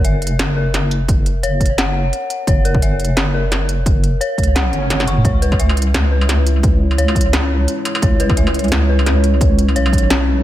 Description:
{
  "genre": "half-time drum and bass",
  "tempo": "173 BPM",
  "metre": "4/4",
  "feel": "swing 57% on 16ths, half-time",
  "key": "C# dorian",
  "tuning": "A4 = 440 Hz",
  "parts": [
    { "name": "dark detuned synth bell", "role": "arpeggios", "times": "0.0-10.4 s", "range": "C#4 to C#6", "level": "-22 LUFS", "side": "left 3 dB", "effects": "chorus, dub echo" },
    { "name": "deep soft wobble bass", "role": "bass", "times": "0.0-10.4 s", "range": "F#1 to C#2", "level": "-16 LUFS", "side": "equal", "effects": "chorus, tube saturation" },
    { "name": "industrial drum kit", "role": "drums", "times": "0.0-10.2 s", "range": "hi-hat, snare drum, struck metal, toms", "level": "-21 LUFS", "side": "equal", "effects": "none" },
    { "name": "electronic kick drum", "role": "drums", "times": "1.1-10.0 s", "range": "none", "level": "-16 LUFS", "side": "equal", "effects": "none" },
    { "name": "swell", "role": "sound effects", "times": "4.7-5.2 s", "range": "none", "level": "-27 LUFS", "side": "right 1 dB", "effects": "none" },
    { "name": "dark analog pad", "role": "sustained chords", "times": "5.2-10.4 s", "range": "G#3 to C#5", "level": "-22 LUFS", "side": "right 1 dB", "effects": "chorus, sidechain pumping" }
  ],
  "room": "light reverb",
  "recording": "echo-heavy mix",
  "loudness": "-13 LUFS",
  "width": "side -13 dB against mid",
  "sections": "0.0-10.4 A section",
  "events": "swell 4.7-5.2; drum fill 4.9-5.2",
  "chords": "0.0 F#; 5.2 C#m"
}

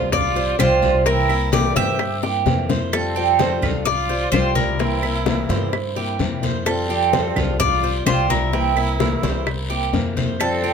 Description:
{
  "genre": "latin, Cuban son and guajira",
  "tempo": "128 BPM",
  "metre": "4/4",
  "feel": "straight",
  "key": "F major",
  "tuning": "A4 = 440 Hz",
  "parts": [
    { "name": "Cuban tres", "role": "melody", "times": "0.0-10.7 s", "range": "A4 to E5", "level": "-23 LUFS", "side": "left 1 dB", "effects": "plate reverb" },
    { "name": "bright silver concert flute", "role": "second line", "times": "0.0-10.7 s", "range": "C4 to G4", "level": "-28 LUFS", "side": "right 7 dB", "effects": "none" },
    { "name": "fingerpicked acoustic archtop guitar", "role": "accompaniment", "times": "0.0-10.7 s", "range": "C3 to F4", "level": "-25 LUFS", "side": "left 6 dB", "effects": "none" },
    { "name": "Cuban tres", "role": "arpeggios", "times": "0.0-10.7 s", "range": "C4 to C5", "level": "-25 LUFS", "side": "right 12 dB", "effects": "none" },
    { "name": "upright bass", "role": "bass", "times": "0.0-10.7 s", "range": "C2 to G2", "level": "-24 LUFS", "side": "equal", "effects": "none" },
    { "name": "bongos", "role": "percussion", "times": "0.1-10.7 s", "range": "none", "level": "-25 LUFS", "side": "left 8 dB", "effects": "none" },
    { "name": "congas", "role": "percussion", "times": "0.1-10.7 s", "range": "none", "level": "-26 LUFS", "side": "left 2 dB", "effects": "none" },
    { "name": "guiro", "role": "percussion", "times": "0.1-10.7 s", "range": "none", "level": "-33 LUFS", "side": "left 4 dB", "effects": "none" },
    { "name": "claves", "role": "percussion", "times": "0.6-10.6 s", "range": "none", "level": "-28 LUFS", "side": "right 8 dB", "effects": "none" }
  ],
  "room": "light reverb",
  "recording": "none",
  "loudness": "-17 LUFS",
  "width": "side -6 dB against mid",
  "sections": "0.0-2.9 A section; 2.9-10.7 A section",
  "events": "drum fill 2.2-2.9",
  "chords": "0.0 Fsus2; 1.1 C7; 2.9 Fadd9; 4.8 C7; 6.7 Fadd9; 8.5 C7"
}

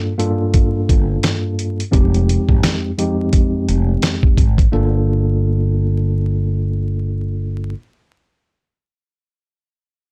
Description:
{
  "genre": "hip hop, boom-bap hip-hop",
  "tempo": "86 BPM",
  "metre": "4/4",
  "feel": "swing 58% on 16ths",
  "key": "G minor",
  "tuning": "A4 = 440 Hz",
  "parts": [
    { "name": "mellow tine electric piano", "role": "accompaniment", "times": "0.0-7.7 s", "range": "F2 to A4", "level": "-22 LUFS", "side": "equal", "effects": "cassette tape, high-pass filter, low-pass filter" },
    { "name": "dusty soul sampler-style drum kit", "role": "drums", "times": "0.2-4.7 s", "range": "hi-hat, kick drum, snare drum", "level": "-17 LUFS", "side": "equal", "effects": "none" },
    { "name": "mellow fretless electric bass", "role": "bass", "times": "0.9-7.7 s", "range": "F1 to Ab1", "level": "-19 LUFS", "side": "equal", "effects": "transformer saturation, lush chorus" }
  ],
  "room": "little or no reverb",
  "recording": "dry, gritty hardware recording, vinyl crackle",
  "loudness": "-17 LUFS",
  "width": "mono",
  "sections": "0.0-4.7 A section; 4.7-7.5 B section",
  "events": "none",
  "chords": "0.0 Gm9; 1.9 Fm9; 4.7 Gm9"
}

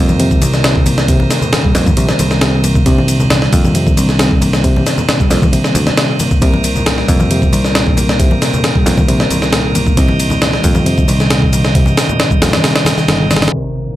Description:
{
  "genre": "breakbeat, breaks",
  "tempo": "135 BPM",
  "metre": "4/4",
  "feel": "straight",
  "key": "C minor",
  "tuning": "A4 = 440 Hz",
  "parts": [
    { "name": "tonewheel organ", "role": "sustained chords", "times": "0.0-14.0 s", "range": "Eb3 to Eb5", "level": "-21 LUFS", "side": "right 2 dB", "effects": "overdrive, stopped rotary speaker, vintage 12-bit sampler grit, sidechain pumping" },
    { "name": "reed electric piano", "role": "riff", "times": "0.0-14.0 s", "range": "Bb2 to Bb3", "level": "-16 LUFS", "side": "equal", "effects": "fast tremolo, tube saturation, low-pass filter, tape echo" },
    { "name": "picked electric bass", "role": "bass", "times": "0.0-13.5 s", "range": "G1 to F2", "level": "-16 LUFS", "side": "equal", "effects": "none" },
    { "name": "shaker", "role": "drums", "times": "0.1-13.5 s", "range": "none", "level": "-27 LUFS", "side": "left 8 dB", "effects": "none" },
    { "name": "congas", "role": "percussion", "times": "0.1-13.4 s", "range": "none", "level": "-22 LUFS", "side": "left 2 dB", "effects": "none" },
    { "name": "breakbeat sampler-style drum kit", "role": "drums", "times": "0.2-13.9 s", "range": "kick drum, ride cymbal, snare drum", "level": "-14 LUFS", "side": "equal", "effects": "high-pass filter on cymbals, high-pass filter on snare, high-pass filter on kick, high-pass filter on room" },
    { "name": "impact", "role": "sound effects", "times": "13.5-14.0 s", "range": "none", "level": "-27 LUFS", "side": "equal", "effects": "none" }
  ],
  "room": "digital ambience",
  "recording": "low-pass filter",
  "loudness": "-10 LUFS",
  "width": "side -14 dB against mid",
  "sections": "0.0-13.5 A section",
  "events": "impact 13.5-14.0",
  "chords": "0.0 Cm7"
}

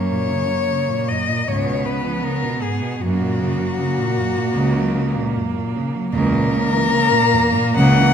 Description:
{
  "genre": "classical, lyrical piece for cello ensemble",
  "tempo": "66-80 BPM",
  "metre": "4/4",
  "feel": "rubato",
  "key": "unclear",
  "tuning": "A4 = 441 Hz",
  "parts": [
    { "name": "rich cello", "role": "melody", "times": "0.0-8.1 s", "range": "Gb4 to F#5", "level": "-21 LUFS", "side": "left 5 dB", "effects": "none" },
    { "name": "rich cello", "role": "second line", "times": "0.0-8.1 s", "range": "Bb3 to Cb4", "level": "-23 LUFS", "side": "right 5 dB", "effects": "none" },
    { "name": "warm cello", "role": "accompaniment", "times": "0.0-8.1 s", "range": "E2 to Gb3", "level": "-22 LUFS", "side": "left 1 dB", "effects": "none" },
    { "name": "rich cello", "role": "bass", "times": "0.0-8.1 s", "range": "C#2 to Gb2", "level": "-23 LUFS", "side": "right 2 dB", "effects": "none" }
  ],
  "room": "wet scoring stage reverb, RT60 1.4 s",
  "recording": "none",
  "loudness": "-17 LUFS",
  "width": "side -8 dB against mid",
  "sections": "0.0-8.1 A section",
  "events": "none",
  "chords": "0.0 Gb; 1.5 Db7; 3.0 Gb; 6.1 A#dim/C#"
}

